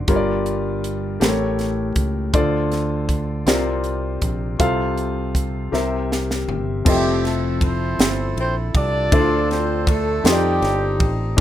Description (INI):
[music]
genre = slow gospel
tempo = 53 BPM (dotted quarters)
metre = 6/8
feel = straight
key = F major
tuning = A4 = 440 Hz
[part]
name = clear concert grand piano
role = accompaniment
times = 0.0-11.4 s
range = G2 to F5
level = -22 LUFS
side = left 2 dB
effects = none
[part]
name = fingered electric bass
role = bass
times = 0.0-11.4 s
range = F1 to F2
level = -24 LUFS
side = right 1 dB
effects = none
[part]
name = crisp fusion drum kit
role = drums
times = 0.1-11.4 s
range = crash cymbal, hi-hat, kick drum, ride cymbal, snare drum, toms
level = -20 LUFS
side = right 1 dB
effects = none
[part]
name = mellow horn section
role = melody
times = 6.9-11.3 s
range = G3 to D5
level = -22 LUFS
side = right 2 dB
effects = none
[sound]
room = light reverb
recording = rough home demo mix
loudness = -18 LUFS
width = side -12 dB against mid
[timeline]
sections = 0.0-6.9 A section; 6.9-11.4 B section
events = drum fill 5.7-6.9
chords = 0.1 Gm7; 1.2 A7b9; 2.3 Dm7; 3.5 C9sus4; 4.6 F/C; 5.7 C7; 6.9 Fmaj7; 9.1 Dm7; 10.2 F13